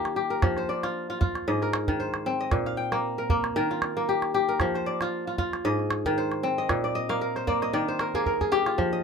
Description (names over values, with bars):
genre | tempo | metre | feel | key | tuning
west african traditional, West African string and xylophone music | 115 BPM | 4/4 | swing 55% on 16ths | unclear | A4 = 441 Hz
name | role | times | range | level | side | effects
kora | arpeggios | 0.0-9.0 s | Ab2 to G5 | -25 LUFS | left 1 dB | none
calabash | percussion | 0.1-8.9 s | none | -28 LUFS | right 2 dB | none
room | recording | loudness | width
light reverb | minimal, uncompressed stereo recording | -24 LUFS | side -6 dB against mid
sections
0.0-8.8 A section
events
kora fill 6.8-8.8; drum fill 8.1-8.8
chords
0.4 F5; 1.5 Ab; 2.5 Bb5; 3.6 Eb; 4.6 F5; 5.7 Ab; 6.7 Bbadd11; 7.7 Eb